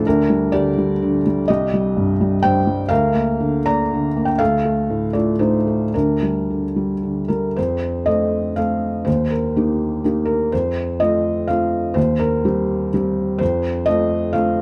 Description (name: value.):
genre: neoclassical minimalist piano.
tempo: 105-128 BPM.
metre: 3/4.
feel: rubato.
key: unclear.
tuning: A4 = 435 Hz.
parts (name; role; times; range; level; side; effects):
felt-muted upright piano; solo; 0.0-14.6 s; C2 to Bb5; -19 LUFS; equal; none.
room: light reverb.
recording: dark, warm production.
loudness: -19 LUFS.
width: mono.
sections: 0.0-7.6 A section; 7.6-14.6 B section.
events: none.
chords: 0.0 Gm/D; 1.5 Cm; 2.9 Bb/D; 4.4 Dm; 5.9 Gm/D; 7.6 F; 9.1 Eb; 10.5 F; 12.0 Cm/Eb; 13.4 F.